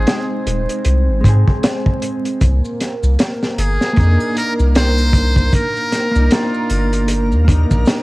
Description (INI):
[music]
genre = trip hop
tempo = 77 BPM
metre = 4/4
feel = swing 59% on 16ths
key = C minor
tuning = A4 = 442 Hz
[part]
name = trumpet with metal mute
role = melody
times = 0.0-7.1 s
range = F4 to C5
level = -23 LUFS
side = equal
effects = tape echo
[part]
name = mellow electric guitar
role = accompaniment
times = 0.0-8.0 s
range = Ab3 to Ab4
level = -22 LUFS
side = equal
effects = harmonic tremolo
[part]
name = dark analog pad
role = sustained chords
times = 0.0-8.0 s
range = Bb3 to C5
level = -25 LUFS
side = equal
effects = chorus
[part]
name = soft dub sub bass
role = bass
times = 0.0-7.8 s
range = Eb1 to Ab2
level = -14 LUFS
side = equal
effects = none
[part]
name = crunchy breakbeat drum kit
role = drums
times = 0.1-8.0 s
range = hi-hat, kick drum, snare drum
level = -16 LUFS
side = equal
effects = none
[part]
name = maracas and triangle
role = percussion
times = 2.4-8.0 s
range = none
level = -38 LUFS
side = left 2 dB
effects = none
[part]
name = backwards swelling texture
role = texture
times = 3.5-8.0 s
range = Bb4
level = -31 LUFS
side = right 2 dB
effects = built-in reverb
[sound]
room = studio reverb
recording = worn, warbling old tape, cassette tape, vinyl crackle, warbly pitch drift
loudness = -13 LUFS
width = side -21 dB against mid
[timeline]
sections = 0.0-8.0 A section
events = none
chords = 0.0 Ab; 2.4 Cm7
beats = 0.08 0.86 1.64 | 2.41 3.19 3.97 4.75 | 5.53 6.31 7.09 7.87